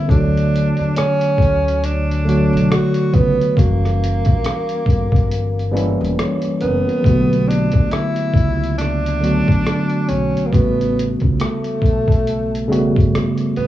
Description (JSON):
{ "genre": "lo-fi hip hop", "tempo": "69 BPM", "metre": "4/4", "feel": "swing 60% on 16ths", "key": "B minor", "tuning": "A4 = 442 Hz", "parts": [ { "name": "breathy tenor saxophone", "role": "melody", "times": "0.0-13.7 s", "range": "A3 to F#4", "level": "-21 LUFS", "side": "right 1 dB", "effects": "cassette tape, analog delay" }, { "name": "tine electric piano", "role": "accompaniment", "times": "0.0-13.7 s", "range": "C#3 to C#5", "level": "-19 LUFS", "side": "equal", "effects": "medium stereo tremolo, cassette tape" }, { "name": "upright bass", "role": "bass", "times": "0.1-13.7 s", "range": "E1 to E2", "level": "-21 LUFS", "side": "equal", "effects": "none" }, { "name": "lo-fi sampler-style drum kit", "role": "drums", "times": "0.1-13.7 s", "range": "hi-hat, kick drum, rim click", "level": "-18 LUFS", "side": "equal", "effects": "cassette tape" } ], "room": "light reverb", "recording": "home recording on cassette, small room ambience", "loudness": "-14 LUFS", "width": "side -13 dB against mid", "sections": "0.0-7.0 A section; 7.0-13.7 B section", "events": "none", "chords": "0.1 Dmaj7; 3.6 F#7b9; 7.0 Bm7; 10.5 A13" }